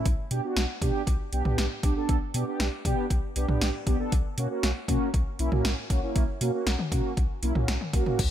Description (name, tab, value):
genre	synth-pop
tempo	118 BPM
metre	4/4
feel	straight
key	unclear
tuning	A4 = 440 Hz
part	mellow synth brass	accompaniment	0.0-8.2 s	A#3 to A4	-30 LUFS	right 2 dB	chorus
part	round analog bass	bass	0.1-8.3 s	B1 to B2	-28 LUFS	equal	none
part	deep house drum kit	drums	0.1-8.3 s	crash cymbal, hi-hat, kick drum, snare drum, toms	-28 LUFS	equal	overdrive
room	light reverb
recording	bright 1980s-style digital production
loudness	-25 LUFS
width	side -11 dB against mid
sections	0.0-8.2 A section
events	none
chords	0.1 G/B; 4.1 F#/B